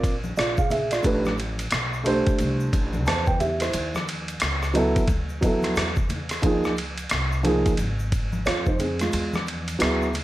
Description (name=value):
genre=hip hop, jazz-hop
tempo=89 BPM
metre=4/4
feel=swing 62% on 16ths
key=unclear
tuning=A4 = 440 Hz
part: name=dark upright piano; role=accompaniment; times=0.0-10.1 s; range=E#3 to A5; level=-24 LUFS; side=right 2 dB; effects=none
part: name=upright bass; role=bass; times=0.0-10.2 s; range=G#1 to E#2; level=-29 LUFS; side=equal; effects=none
part: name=boom bap sampler-style drum kit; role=drums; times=0.0-10.2 s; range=hi-hat, kick drum, ride cymbal, rim click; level=-26 LUFS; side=equal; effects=none
part: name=tube shaker and congas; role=percussion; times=0.0-10.2 s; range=none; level=-36 LUFS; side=left 1 dB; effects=none
room=light reverb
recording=vinyl crackle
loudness=-21 LUFS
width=side -15 dB against mid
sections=0.0-10.2 A section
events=none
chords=0.0 A#; 1.0 Am9; 3.7 D#m7; 5.1 D; 6.4 C#maj9; 9.1 E7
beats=0.37 | 1.04 1.72 2.39 3.06 | 3.74 4.41 5.09 5.76 | 6.43 7.11 7.78 8.46 | 9.13 9.81